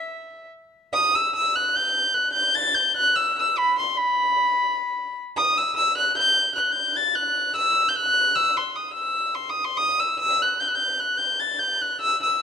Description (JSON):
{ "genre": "balkan folk", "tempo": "free time", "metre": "none", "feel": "none", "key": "E harmonic minor", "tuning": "A4 = 440 Hz", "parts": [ { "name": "dark violin", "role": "solo", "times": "0.0-12.4 s", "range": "E5 to A6", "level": "-20 LUFS", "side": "left 1 dB", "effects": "none" } ], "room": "moderate recital hall reverb, RT60 1.6 s", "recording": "dark, warm production", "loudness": "-20 LUFS", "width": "side -7 dB against mid", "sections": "0.9-12.4 A section", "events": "none", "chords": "none", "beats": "free time" }